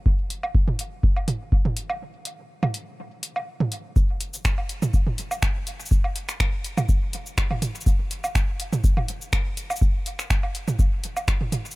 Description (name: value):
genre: techno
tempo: 123 BPM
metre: 4/4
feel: swing 53% on 16ths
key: none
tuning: none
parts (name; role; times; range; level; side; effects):
- electronic kick drum; drums; 0.1-11.4 s; none; -21 LUFS; equal; none
- deep house drum kit; drums; 0.3-11.8 s; cabasa, finger snaps, hi-hat; -30 LUFS; equal; overdrive
- electronic woodblock and toms; percussion; 0.4-11.6 s; none; -27 LUFS; right 2 dB; overdrive, sidechain pumping on toms, sidechain pumping on perc, dub echo
room: little or no reverb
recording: none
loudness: -22 LUFS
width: side -21 dB against mid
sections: 0.0-4.0 A section; 4.0-11.8 A section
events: break 2.0-4.0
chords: none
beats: | 0.06 0.55 1.03 1.52 | 2.01 2.50 2.99 3.47 | 3.96 4.45 4.94 5.42 | 5.91 6.40 6.89 7.38 | 7.86 8.35 8.84 9.33 | 9.81 10.30 10.79 11.28